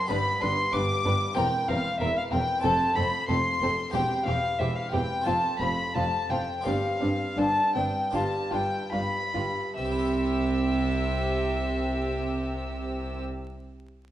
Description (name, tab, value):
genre	classical, baroque-style concerto movement with solo episodes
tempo	70-94 BPM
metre	4/4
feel	straight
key	C major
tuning	A4 = 440 Hz
part	dark violin	melody	0.0-13.2 s	E5 to D6	-29 LUFS	left 1 dB	none
part	warm studio violin section	melody	0.0-13.2 s	E5 to E6	-34 LUFS	left 2 dB	none
part	harpsichord	accompaniment	0.0-13.5 s	E2 to E5	-35 LUFS	right 1 dB	none
part	rich chamber violin section	second line	0.1-13.2 s	D4 to B4	-34 LUFS	left 1 dB	none
part	dark chamber viola section	accompaniment	0.1-13.2 s	C4 to D4	-35 LUFS	right 1 dB	none
part	rich chamber double bass section	bass	0.1-13.2 s	E1 to C2	-33 LUFS	right 1 dB	none
part	warm chamber cello section	bass	0.1-13.2 s	E2 to C3	-33 LUFS	right 2 dB	none
room	wet recital hall reverb, RT60 1.3 s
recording	vinyl crackle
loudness	-24 LUFS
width	side -12 dB against mid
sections	0.0-9.8 A section; 9.8-13.2 B section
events	slowing down 2.6-9.8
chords	0.1 G; 1.4 C7/E; 2.6 F; 3.9 C/E; 5.3 F5; 6.7 G7sus4; 8.1 G7; 9.8 C